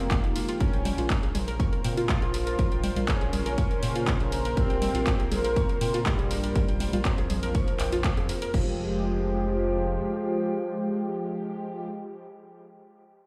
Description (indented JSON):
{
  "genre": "melodic techno",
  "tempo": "121 BPM",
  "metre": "4/4",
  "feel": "straight",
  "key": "F minor",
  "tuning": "A4 = 444 Hz",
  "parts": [
    { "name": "analog synth brass", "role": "melody", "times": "0.0-11.9 s", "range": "F2 to F4", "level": "-36 LUFS", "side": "equal", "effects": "chorus, sidechain pumping, dub echo" },
    { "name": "lush unison pad", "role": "sustained chords", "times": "0.0-11.9 s", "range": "F3 to C5", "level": "-40 LUFS", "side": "equal", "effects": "chorus, sidechain pumping" },
    { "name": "warbly dusty pluck", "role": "arpeggios", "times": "0.0-8.8 s", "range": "Eb4 to Db6", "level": "-37 LUFS", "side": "equal", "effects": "chorus, vintage 12-bit sampler grit, sidechain pumping, dub echo" },
    { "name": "round analog bass", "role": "bass", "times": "0.0-10.0 s", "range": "F1 to Bb2", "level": "-33 LUFS", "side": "equal", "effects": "sidechain pumping" },
    { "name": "warbly tape-like pad", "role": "texture", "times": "1.3-12.0 s", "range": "Ab3 to C6", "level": "-40 LUFS", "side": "equal", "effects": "none" },
    { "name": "electronic kick drum", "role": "drums", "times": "0.1-8.6 s", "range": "none", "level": "-29 LUFS", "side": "equal", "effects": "none" },
    { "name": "punchy analog drum machine", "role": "drums", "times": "0.1-8.6 s", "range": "congas, crash cymbal, handclaps, hi-hat", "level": "-36 LUFS", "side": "equal", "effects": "none" },
    { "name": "brassy analog pad", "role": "stabs", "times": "0.2-11.9 s", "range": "Bb2 to C5", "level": "-35 LUFS", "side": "equal", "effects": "chorus, sidechain pumping, dub echo" }
  ],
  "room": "light reverb",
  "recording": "played on a big sound system in a bare room, stone room reverb",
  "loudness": "-27 LUFS",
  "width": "mono",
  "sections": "0.0-8.5 A section; 8.5-12.5 B section",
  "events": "drop 0.0-8.5; band accent 8.0",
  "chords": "0.0 Fmadd9; 0.6 Bbmadd9; 8.5 Fmadd9"
}